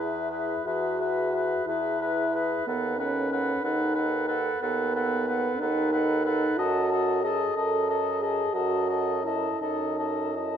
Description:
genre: classical, slow romantic movement for wind quintet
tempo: 51-63 BPM (dotted quarters)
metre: 12/8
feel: rubato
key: unclear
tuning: A4 = 440 Hz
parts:
  - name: mellow hollow silver concert flute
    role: melody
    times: 0.0-10.6 s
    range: E5 to A5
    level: -32 LUFS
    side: left 5 dB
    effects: none
  - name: warm oboe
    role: second line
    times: 0.0-10.6 s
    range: B4 to D#5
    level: -31 LUFS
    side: left 2 dB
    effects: none
  - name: warm French horn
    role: accompaniment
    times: 0.0-10.6 s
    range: B3 to A4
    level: -29 LUFS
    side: equal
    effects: none
  - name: warm clarinet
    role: accompaniment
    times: 0.0-10.6 s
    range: G#4 to A4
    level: -34 LUFS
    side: right 8 dB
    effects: none
  - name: mellow bassoon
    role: bass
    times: 0.0-10.6 s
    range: D#2 to F#2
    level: -31 LUFS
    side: right 3 dB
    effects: none
room: wet recital hall reverb, RT60 1.3 s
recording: none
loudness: -24 LUFS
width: side -8 dB against mid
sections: 0.0-10.6 A section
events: none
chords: 0.0 E; 2.7 B7/D#; 6.6 D#dim/F#

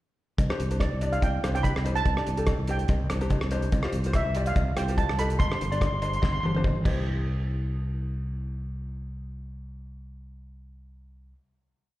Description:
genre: calypso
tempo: 144 BPM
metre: 4/4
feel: swing 54% on 16ths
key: C major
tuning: A4 = 440 Hz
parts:
  - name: fretless electric bass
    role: bass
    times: 0.4-11.3 s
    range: G1 to C2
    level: -29 LUFS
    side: equal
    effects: none
  - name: warm soul drum kit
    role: drums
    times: 0.4-7.0 s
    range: crash cymbal, hi-hat, kick drum, rim click, snare drum, toms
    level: -28 LUFS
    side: equal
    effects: none
  - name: cowbell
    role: percussion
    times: 0.4-7.2 s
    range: none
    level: -40 LUFS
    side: left 3 dB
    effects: slapback echo
  - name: ukulele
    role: accompaniment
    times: 0.5-11.3 s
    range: D4 to D5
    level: -34 LUFS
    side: left 2 dB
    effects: slapback echo
  - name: steel pan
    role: melody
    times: 0.8-6.5 s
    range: D5 to C6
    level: -31 LUFS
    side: right 3 dB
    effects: slapback echo
room: little or no reverb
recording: live gig heard through the venue's PA, recital hall reverb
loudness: -24 LUFS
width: side -16 dB against mid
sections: 0.4-7.1 verse; 7.1-10.4 final hit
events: drum fill 6.2-7.1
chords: 0.4 Csus2; 3.7 Fsus2/C; 5.4 Gsus4; 6.9 C

